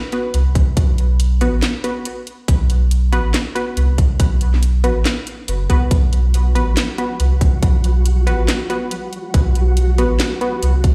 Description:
deep dubstep; 140 BPM; 4/4; swing 60% on 16ths, half-time; A4 = 440 Hz
filtered dub chord stab; stabs; 0.1-10.6 s; B3 to B4; -26 LUFS; equal; chorus, dub echo
garage drum kit; drums; 0.1-10.9 s; handclaps, hi-hat, snare drum; -26 LUFS; equal
soft dub sub bass; bass; 0.3-10.9 s; F#1 to C2; -17 LUFS; equal
electronic kick drum; drums; 0.6-10.9 s; -17 LUFS; equal
flickering grainy texture; texture; 6.2-10.9 s; F#3 to F#4; -30 LUFS; equal; built-in reverb
light reverb; played on a big sound system in a bare room, stone room reverb; -17 LUFS; mono
0.0-10.9 A section
0.0 B5

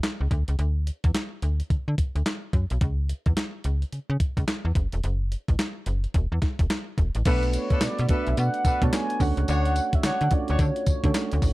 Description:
R&B, new jack swing; 108 BPM; 4/4; swing 62% on 16ths; A4 = 441 Hz
clean 12-bit digital drum machine; drums; 0.0-11.5 s; crash cymbal, handclaps, hi-hat, kick drum, snare drum, tambourine; -24 LUFS; equal
slap-like FM bass; bass; 0.2-11.5 s; E1 to D3; -24 LUFS; equal
soft electric-piano-like synth keys; accompaniment; 7.3-11.5 s; A3 to D5; -29 LUFS; right 3 dB; chorus
warm horn section; stabs; 7.3-10.6 s; D4 to C#5; -32 LUFS; left 2 dB
mellow horn-like synth lead; melody; 7.5-11.4 s; C#5 to A5; -29 LUFS; right 1 dB; chorus
digital ambience; dark, warm production; -22 LUFS; side -19 dB against mid
0.0-7.3 A section; 7.3-11.5 B section
0.3 N.C.; 7.3 Bm7; 9.2 Dmaj7

